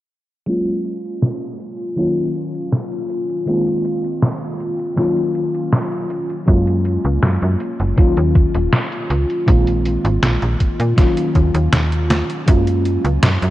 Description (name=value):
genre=vaporwave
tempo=80 BPM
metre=4/4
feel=straight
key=Eb dorian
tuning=A4 = 441 Hz
part: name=FM electric piano with soft pad layer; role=accompaniment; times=0.5-13.5 s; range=Eb3 to F4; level=-19 LUFS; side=left 1 dB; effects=tremolo, wide subtle chorus, tape echo
part: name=detuned 8-bit digital drum machine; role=drums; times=0.5-13.5 s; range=hi-hat, snare drum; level=-19 LUFS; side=equal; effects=gated reverb
part: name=slap-like FM bass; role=bass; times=6.5-13.5 s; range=Eb1 to Bb2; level=-17 LUFS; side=equal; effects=tube saturation
part: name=electronic kick drum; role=drums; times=6.5-12.6 s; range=none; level=-14 LUFS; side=equal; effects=none
room=light reverb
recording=cassette tape, low-pass filter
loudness=-15 LUFS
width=side -15 dB against mid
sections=0.5-12.5 A section; 12.5-13.5 B section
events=filter sweep 0.5-12.5; drum fill 12.1-12.5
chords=0.5 Gbmaj9; 2.0 Ebm7; 3.5 Bb7sus4; 5.0 Ebm7; 6.5 Gbmaj9; 8.0 Ebm7; 9.5 Bb7sus4; 11.0 Ebm7; 12.5 Gbmaj9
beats=| 0.48 1.23 1.98 2.73 | 3.48 4.23 4.98 5.73 | 6.48 7.23 7.98 8.73 | 9.48 10.23 10.98 11.73 | 12.48 13.23